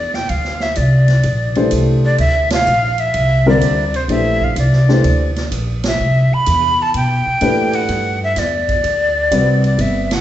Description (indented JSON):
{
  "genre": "modal jazz",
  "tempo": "126 BPM",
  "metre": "4/4",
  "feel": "swing 68% on 8ths",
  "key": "Bb lydian",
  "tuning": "A4 = 440 Hz",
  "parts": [
    { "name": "breathy bright jazz flute", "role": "melody", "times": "0.0-10.2 s", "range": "C5 to B5", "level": "-17 LUFS", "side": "equal", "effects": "none" },
    { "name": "upright bass", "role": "bass", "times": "0.0-10.2 s", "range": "G1 to B2", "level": "-16 LUFS", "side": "equal", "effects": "none" },
    { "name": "swinging big-band drum kit", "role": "drums", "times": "0.1-10.2 s", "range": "hi-hat, kick drum, ride cymbal, snare drum", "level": "-26 LUFS", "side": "right 2 dB", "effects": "none" },
    { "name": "warm baby grand piano", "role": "accompaniment", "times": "1.6-10.0 s", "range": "D3 to D5", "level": "-17 LUFS", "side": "left 2 dB", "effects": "none" }
  ],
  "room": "wet recital hall reverb, RT60 1.4 s",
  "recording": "recorded in a church or concert hall, nothing above 8.0 kHz",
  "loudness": "-13 LUFS",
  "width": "side -12 dB against mid",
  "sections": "0.0-10.2 A section",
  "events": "band accent 2.4, 5.8, 10.0",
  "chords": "0.0 Bbmaj9; 6.0 Cmaj9",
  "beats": "| 0.29 0.77 1.24 1.72 | 2.19 2.67 3.14 3.62 | 4.09 4.57 5.04 5.52 | 5.99 6.47 6.94 7.42 | 7.89 8.37 8.84 9.32 | 9.79"
}